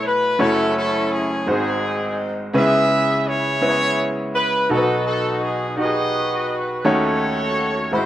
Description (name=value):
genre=slow gospel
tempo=56 BPM (dotted quarters)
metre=6/8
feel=straight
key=unclear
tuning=A4 = 437 Hz
part: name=clear horn section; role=melody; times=0.0-8.1 s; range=B#3 to E5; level=-20 LUFS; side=equal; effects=slapback echo
part: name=clear grand piano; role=accompaniment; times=0.0-8.1 s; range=F#1 to B5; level=-21 LUFS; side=equal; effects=slapback echo
room=little or no reverb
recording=recorded outdoors, with no room sound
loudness=-17 LUFS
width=side -12 dB against mid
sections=0.0-8.1 A section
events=none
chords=0.4 F#m7; 1.5 G#7; 2.5 C#m7; 4.7 B; 6.9 D#m7b5